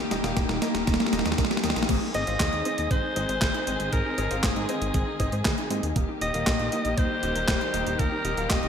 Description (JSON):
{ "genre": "italo disco", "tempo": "118 BPM", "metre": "4/4", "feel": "straight", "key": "unclear", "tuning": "A4 = 439 Hz", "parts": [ { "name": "dark studio string section", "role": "sustained chords", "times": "0.0-8.7 s", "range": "Eb3 to Ab4", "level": "-34 LUFS", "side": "left 1 dB", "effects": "shimmer reverb" }, { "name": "warbly dusty pluck", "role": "arpeggios", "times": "0.0-8.7 s", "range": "Bb3 to G5", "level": "-33 LUFS", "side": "right 2 dB", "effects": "chorus, cassette tape, digital delay, shimmer reverb" }, { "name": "warm grand piano", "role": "stabs", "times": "0.0-8.7 s", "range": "Bb3 to F5", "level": "-34 LUFS", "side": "left 3 dB", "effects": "wide subtle chorus, shimmer reverb" }, { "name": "chorused synth bass", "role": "bass", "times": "0.1-8.7 s", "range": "Eb1 to Ab2", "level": "-32 LUFS", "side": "equal", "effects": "none" }, { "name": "clean 12-bit digital drum machine", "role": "drums", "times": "0.1-8.7 s", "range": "crash cymbal, handclaps, hi-hat, snare drum", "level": "-28 LUFS", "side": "equal", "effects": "gated reverb" }, { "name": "electronic kick drum", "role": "drums", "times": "0.4-8.6 s", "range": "none", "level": "-28 LUFS", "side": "equal", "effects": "none" }, { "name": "raspy alto saxophone", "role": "melody", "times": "2.1-8.7 s", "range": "Ab4 to Eb5", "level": "-29 LUFS", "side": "equal", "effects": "digital delay, shimmer reverb" } ], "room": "wet lush hall reverb, RT60 1.8 s, digital ambience", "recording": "bright 1980s-style digital production", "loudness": "-23 LUFS", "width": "side -8 dB against mid", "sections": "0.0-1.9 A section; 1.9-8.7 B section", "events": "drum fill 0.0-1.9; filter sweep on synth arpeggio sound 0.0-1.9", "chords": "0.0 Eb; 1.9 Ab; 6.0 Eb" }